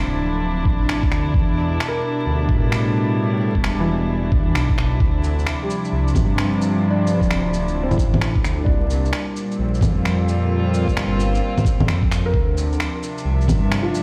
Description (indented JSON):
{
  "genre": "future garage",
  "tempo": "131 BPM",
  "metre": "4/4",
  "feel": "swing 65% on 16ths",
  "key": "D minor",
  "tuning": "A4 = 444 Hz",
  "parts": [
    { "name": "felt-muted upright piano", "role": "accompaniment", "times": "0.0-8.9, 12.3-14.0 s", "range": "E3 to Bb4", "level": "-32 LUFS", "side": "equal", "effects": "sidechain pumping, delay" },
    { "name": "rich chamber string section", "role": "sustained chords", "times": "0.0-14.0 s", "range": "Bb2 to E5", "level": "-26 LUFS", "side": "equal", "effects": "sidechain pumping" },
    { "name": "dark detuned saw bass", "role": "bass", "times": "0.0-14.0 s", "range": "D1 to A2", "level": "-23 LUFS", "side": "equal", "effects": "sidechain pumping" },
    { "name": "electronic kick drum", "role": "drums", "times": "0.7-13.6 s", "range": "none", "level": "-22 LUFS", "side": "equal", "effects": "none" },
    { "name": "electronic finger snaps, shaker and bongos", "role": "drums", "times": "0.9-14.0 s", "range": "none", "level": "-27 LUFS", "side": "equal", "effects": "none" }
  ],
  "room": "digital ambience",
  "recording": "played on a big sound system in a bare room, stone room reverb, vinyl crackle",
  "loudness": "-20 LUFS",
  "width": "mono",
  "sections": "0.0-14.0 A section",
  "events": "none",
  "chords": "0.0 Dm9; 1.3 Em7; 5.0 Dm9; 8.7 C7sus4; 12.3 Dm9",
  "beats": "0.43 0.89 | 1.34 1.80 2.26 2.72 | 3.17 3.63 4.09 4.55 | 5.01 5.46 5.92 6.38 | 6.84 7.30 7.75 8.21 | 8.67 9.13 9.59 10.04 | 10.50 10.96 11.42 11.88 | 12.34 12.79 13.25 13.71"
}